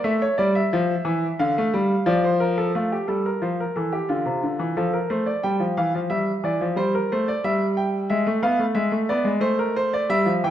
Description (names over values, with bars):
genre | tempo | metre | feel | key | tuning
classical, baroque-style two-part invention for grand piano | 90 BPM | 4/4 | straight | unclear | A4 = 439 Hz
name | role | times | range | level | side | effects
clear grand piano | solo | 0.0-10.5 s | C3 to G5 | -20 LUFS | equal | none
room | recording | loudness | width
wet recital hall reverb, RT60 1.4 s | dark, warm production | -20 LUFS | side -11 dB against mid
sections
0.0-2.7 A section; 2.7-10.5 B section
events
none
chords
0.0 A7(no3); 1.4 Dm; 2.7 F; 4.1 Dm; 5.4 G5; 6.8 Em/G; 8.1 E7/G#; 9.4 Am